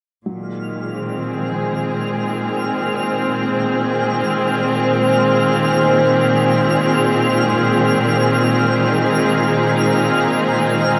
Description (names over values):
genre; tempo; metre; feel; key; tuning
ambient; 54 BPM; 4/4; straight; unclear; A4 = 440 Hz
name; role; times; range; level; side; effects
muted studio string section; sustained chords; 0.3-11.0 s; Bb2 to Ab4; -17 LUFS; equal; shimmer reverb
felt-muted upright piano; arpeggios; 0.3-11.0 s; F3 to Eb5; -33 LUFS; equal; none
twinkling granular texture; texture; 0.5-11.0 s; F6; -28 LUFS; equal; built-in reverb, subtle chorus, shimmer reverb
room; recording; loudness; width
wet lush hall reverb, RT60 2.8 s; dreamy mix soaked in reverb; -17 LUFS; mono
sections
0.3-11.0 A section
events
none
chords
0.3 Ab7/Bb